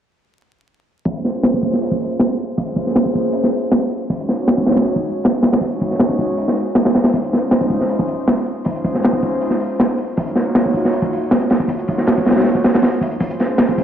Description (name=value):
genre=drum and bass, jungle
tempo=158 BPM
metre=4/4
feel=straight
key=Bb minor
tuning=A4 = 437 Hz
part: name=airy breathy pad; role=sustained chords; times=1.1-13.8 s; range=Ab3 to Db5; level=-20 LUFS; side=equal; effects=chorus, vintage 12-bit sampler grit
part: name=crunchy breakbeat drum kit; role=drums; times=1.1-13.8 s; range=hi-hat, kick drum, snare drum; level=-16 LUFS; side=equal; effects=high-pass filter on kick, high-pass filter on hats, high-pass filter on snare, high-pass filter on room
room=moderate digital room reverb, RT60 1.2 s, small room ambience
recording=played on a big sound system in a bare room, large studio reverb, vinyl crackle, low-pass filter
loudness=-15 LUFS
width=side -9 dB against mid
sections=1.1-13.8 A section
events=filter sweep 1.1-13.8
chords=1.1 Bbm9; 4.1 Ab7sus4; 7.1 Dbmaj9; 10.2 Ebm9; 13.2 Bbm9